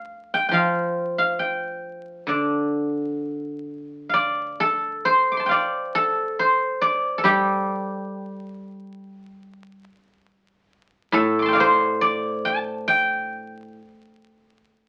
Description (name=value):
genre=chinese traditional, Chinese solo plucked strings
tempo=68 BPM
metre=4/4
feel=rubato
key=D yu mode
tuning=A4 = 438 Hz
part: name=guzheng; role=solo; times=0.0-14.9 s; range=A2 to D6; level=-23 LUFS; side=equal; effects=none
room=moderate studio reverb, RT60 0.7 s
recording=very old 78 rpm record, vinyl crackle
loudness=-22 LUFS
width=mono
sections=0.0-4.1 A section; 4.1-14.9 B section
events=none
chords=none